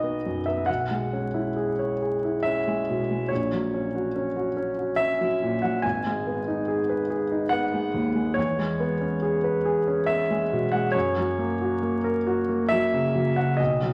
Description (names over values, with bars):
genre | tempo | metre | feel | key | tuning
classical, romantic nocturne for solo piano | 70 BPM | 3/4 | rubato | unclear | A4 = 438 Hz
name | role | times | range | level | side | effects
warm concert grand piano | solo | 0.0-13.9 s | G#1 to G#5 | -25 LUFS | equal | none
room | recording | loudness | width
wet recital hall reverb, RT60 1.5 s | vinyl crackle | -25 LUFS | mono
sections
0.0-13.9 A section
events
none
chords
0.0 B; 0.7 C#m7/B; 3.3 F#/A#; 5.8 G#m; 8.4 C#m7/E; 10.9 F#